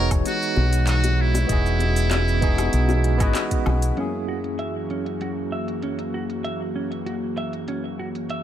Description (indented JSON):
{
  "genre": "sunset chillout",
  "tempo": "97 BPM",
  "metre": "4/4",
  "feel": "straight",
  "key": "unclear",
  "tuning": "A4 = 441 Hz",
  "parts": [
    { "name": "trumpet with metal mute", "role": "melody", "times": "0.0-3.7 s", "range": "E4 to A#4", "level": "-27 LUFS", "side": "right 2 dB", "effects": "digital delay" },
    { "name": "barky tine electric piano", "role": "accompaniment", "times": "0.0-8.4 s", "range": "F#2 to D#5", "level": "-28 LUFS", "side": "equal", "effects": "medium stereo tremolo, auto-pan, digital delay" },
    { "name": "airy breathy pad", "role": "sustained chords", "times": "0.0-8.4 s", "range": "E3 to F#4", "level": "-30 LUFS", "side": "right 1 dB", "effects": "chorus" },
    { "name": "mellow fretless electric bass", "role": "bass", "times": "0.0-3.9 s", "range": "E1 to B1", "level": "-20 LUFS", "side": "equal", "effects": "tube saturation, analog chorus" },
    { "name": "electronic kick drum", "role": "drums", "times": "0.1-3.6 s", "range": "none", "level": "-23 LUFS", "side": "equal", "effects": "small room reverb" },
    { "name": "smooth R&B drum kit", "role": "drums", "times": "0.1-8.4 s", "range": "handclaps, hi-hat, shaker, woodblock", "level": "-32 LUFS", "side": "left 1 dB", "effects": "low-pass filter on hats, small room reverb, low-pass filter on perc, low-pass filter on snare" },
    { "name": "bongos", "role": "percussion", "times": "0.3-3.8 s", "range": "none", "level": "-31 LUFS", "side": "left 6 dB", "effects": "none" },
    { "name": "semi-hollow electric guitar", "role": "arpeggios", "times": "4.0-8.4 s", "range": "C#4 to E5", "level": "-32 LUFS", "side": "right 3 dB", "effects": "low-pass filter, digital delay" }
  ],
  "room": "light reverb",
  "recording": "none",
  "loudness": "-20 LUFS",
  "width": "side -11 dB against mid",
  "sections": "0.0-4.0 A section; 4.0-8.4 B section",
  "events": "band accent 3.4-3.7; filter sweep on clean electric guitar 4.0-8.4",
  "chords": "0.0 Emaj9; 4.0 F#7"
}